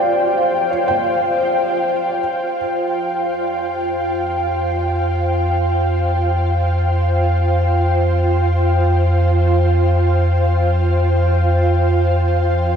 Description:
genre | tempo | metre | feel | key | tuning
ambient | free time | none | none | unclear | A4 = 440 Hz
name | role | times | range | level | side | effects
ethereal airy pad | sustained chords | 0.0-12.8 s | F4 to G5 | -18 LUFS | equal | ensemble chorus, built-in reverb
felt-muted upright piano | arpeggios | 0.0-2.6 s | G4 to G5 | -25 LUFS | equal | diffuse ambient delay
deep rumbling drone | bass | 3.9-12.8 s | F2 | -16 LUFS | equal | built-in reverb
room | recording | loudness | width
wet huge ambient reverb, RT60 8.4 s | dark, warm production | -15 LUFS | side -7 dB against mid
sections
0.0-2.2 A section; 2.2-12.8 B section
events
none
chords
0.0 Fsus2

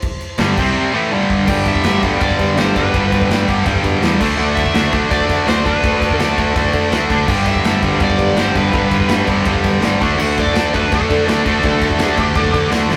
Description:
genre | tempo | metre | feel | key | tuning
heavy metal | 165 BPM | 4/4 | straight | unclear | A4 = 441 Hz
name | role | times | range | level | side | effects
dark chamber string section | sustained chords | 0.0-13.0 s | C4 to D6 | -32 LUFS | equal | none
modern studio drum kit | drums | 0.0-13.0 s | crash cymbal, kick drum, ride cymbal, snare drum, toms | -22 LUFS | equal | none
heavy high-gain guitar | riff | 0.4-12.9 s | G2 to D4 | -24 LUFS | equal | none
high-gain distorted guitar | riff | 0.4-13.0 s | G2 to D4 | -24 LUFS | equal | distortion
high-gain distorted guitar | riff | 0.4-13.0 s | G2 to D4 | -21 LUFS | equal | distortion
modern bright fingered electric bass | bass | 0.4-13.0 s | G1 to D3 | -24 LUFS | equal | none
high-gain lead guitar | melody | 1.5-12.7 s | A4 to G5 | -24 LUFS | equal | distortion
room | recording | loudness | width
light reverb | rough rehearsal-room recording, tube saturation | -15 LUFS | mono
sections
0.0-1.5 A section; 1.5-13.0 B section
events
drum fill 1.1-1.5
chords
0.0 Am; 0.6 C5; 0.9 Am; 1.1 G5; 1.5 G; 4.2 D; 7.3 G; 10.0 D

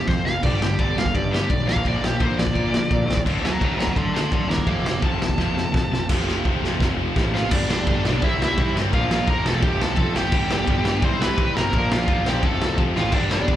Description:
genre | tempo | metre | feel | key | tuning
punk rock | 170 BPM | 4/4 | straight | unclear | A4 = 441 Hz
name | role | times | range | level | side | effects
high-gain lead guitar | melody | 0.0-13.6 s | D4 to D6 | -26 LUFS | equal | distortion
crunchy overdriven guitar | riff | 0.0-13.6 s | F2 to E4 | -30 LUFS | equal | slapback echo
distorted electric guitar | riff | 0.0-13.6 s | F2 to G4 | -30 LUFS | right 8 dB | distortion
tight distorted guitar | riff | 0.0-13.6 s | F2 to D4 | -29 LUFS | left 10 dB | distortion, slapback echo
fuzz picked electric bass | bass | 0.1-13.6 s | E1 to D3 | -25 LUFS | equal | overdrive
raw garage drum kit | drums | 0.1-13.6 s | crash cymbal, kick drum, ride cymbal, snare drum | -23 LUFS | equal | none
room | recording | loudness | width
little or no reverb | live gig heard through the venue's PA, club reverb | -19 LUFS | side -12 dB against mid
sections
0.0-6.1 A section; 6.1-7.5 B section; 7.5-13.6 C section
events
lead electric guitar solo 0.0-6.1; drum fill 0.1-0.4, 5.4-6.1, 6.1-7.5, 13.0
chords
0.4 G; 1.7 Bb; 3.3 D; 4.7 F; 7.5 G; 8.2 C; 8.9 Bb; 9.6 F; 10.3 G; 11.0 C; 11.7 Bb; 12.4 F

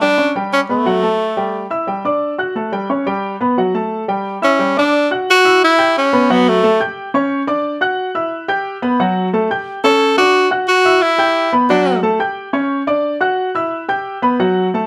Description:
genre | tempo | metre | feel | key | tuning
latin | 178 BPM | 4/4 | straight | D major | A4 = 440 Hz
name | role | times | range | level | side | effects
clear tenor saxophone | melody | 0.0-1.7, 4.4-6.8, 9.8-12.0 s | A3 to A4 | -14 LUFS | equal | none
warm baby grand piano | accompaniment | 0.0-14.9 s | F#3 to G6 | -18 LUFS | equal | none
room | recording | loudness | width
moderate studio reverb, RT60 0.6 s | none | -15 LUFS | mono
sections
0.0-4.9 A section; 4.9-14.9 B section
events
none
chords
0.2 A9/G; 0.9 F#m; 1.5 Em7/G; 2.2 D; 2.9 G; 3.6 F#m; 4.3 Em7/G; 4.9 Dadd9; 5.6 Em6; 6.3 Gmaj9/F#; 7.0 G5; 7.6 D; 8.3 Em; 9.0 F#m; 9.7 A7; 10.3 D; 11.0 Em; 11.7 Dadd11/F#; 12.4 G5; 13.0 D; 13.7 Em

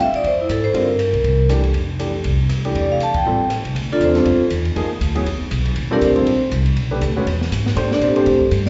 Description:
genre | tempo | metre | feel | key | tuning
jazz, small-group swing and bop | 239 BPM | 4/4 | swing 57% on 8ths | F major, D minor from 3.8 s | A4 = 440 Hz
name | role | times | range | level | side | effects
vibraphone with medium hard mallets | melody | 0.0-8.7 s | C4 to A5 | -19 LUFS | equal | none
upright bass | bass | 0.0-8.7 s | G1 to Bb2 | -23 LUFS | equal | none
open jazz drum kit | drums | 0.1-8.7 s | hi-hat, kick drum, ride cymbal, rim click, snare drum | -31 LUFS | equal | none
warm baby grand piano | accompaniment | 0.7-8.3 s | D3 to C5 | -26 LUFS | equal | slapback echo
room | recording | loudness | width
light reverb, small room ambience | live gig heard through the venue's PA, recital hall reverb, nothing above 7.8 kHz | -18 LUFS | mono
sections
0.0-3.8 A section; 3.8-8.7 B section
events
band accent 3.1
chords
0.0 Dm7; 0.7 Gm7; 1.2 C7; 1.7 Fmaj9; 2.8 Fmaj13/E (rootless); 3.3 Am7; 3.8 Dm9; 4.8 Fm7; 5.3 E5; 5.8 Eb; 6.8 Bm7; 7.3 E; 7.8 Am7

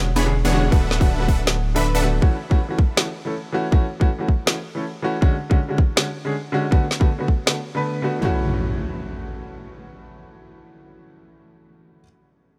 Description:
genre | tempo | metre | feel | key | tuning
future bass | 160 BPM | 4/4 | swing 53% on 16ths, half-time | A major | A4 = 440 Hz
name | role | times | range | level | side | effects
bright baby grand piano | accompaniment | 0.0-12.0 s | D3 to B4 | -27 LUFS | equal | sidechain pumping, dub echo
saturated sub bass | bass | 0.0-2.2 s | D1 to E1 | -24 LUFS | equal | sidechain pumping
supersaw stab | riff | 0.2-2.0 s | E3 to B5 | -28 LUFS | equal | sidechain pumping, dub echo
electronic kick drum | drums | 0.7-7.4 s | none | -19 LUFS | equal | small room ambience
electronic snare drum | drums | 0.9-7.6 s | none | -22 LUFS | equal | small room ambience
impact | sound effects | 8.2-12.0 s | none | -29 LUFS | equal | none
room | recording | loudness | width
digital ambience | none | -21 LUFS | mono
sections
0.0-8.2 A section; 8.2-11.2 B section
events
none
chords
0.0 E13; 0.7 D6; 2.2 A6; 5.2 Dmaj7#11; 6.7 D6; 8.2 A6

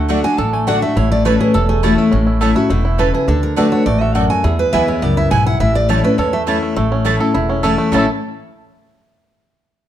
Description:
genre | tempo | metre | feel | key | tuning
bluegrass | 207 BPM | 4/4 | straight | A major | A4 = 441 Hz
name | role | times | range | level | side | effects
picked steel-string acoustic guitar | melody | 0.0-8.1 s | E4 to A5 | -19 LUFS | right 2 dB | none
picked steel-string acoustic guitar | accompaniment | 0.0-8.1 s | E2 to F#4 | -17 LUFS | left 3 dB | none
bluegrass banjo | arpeggios | 0.0-8.1 s | A3 to A4 | -21 LUFS | right 3 dB | none
upright bass | bass | 0.0-8.1 s | E1 to E2 | -19 LUFS | right 1 dB | none
mandolin | stabs | 0.1-8.1 s | A3 to A5 | -24 LUFS | right 6 dB | none
room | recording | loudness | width
moderate large studio reverb, RT60 1.2 s | dark, warm production | -13 LUFS | side -11 dB against mid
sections
0.0-6.8 A section; 6.8-7.9 B section; 7.9-9.1 C section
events
none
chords
0.0 D; 1.0 A; 3.3 D; 4.4 E; 5.6 A

